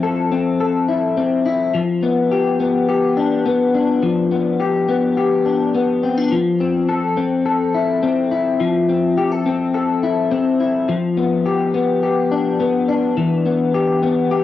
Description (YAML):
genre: dream pop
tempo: 105 BPM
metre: 4/4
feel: straight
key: unclear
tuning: A4 = 440 Hz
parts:
  - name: electric guitar at the edge of break-up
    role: solo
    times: 0.0-14.4 s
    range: E3 to A4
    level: -15 LUFS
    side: left 3 dB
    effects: analog chorus, cassette tape, analog delay
room: moderate spring reverb, RT60 1.2 s, digital ambience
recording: home recording on cassette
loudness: -15 LUFS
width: side -12 dB against mid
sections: 0.0-14.4 A section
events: none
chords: 0.0 Fmaj7; 1.7 G7; 6.3 Fmaj7; 10.9 G7; 13.2 Em7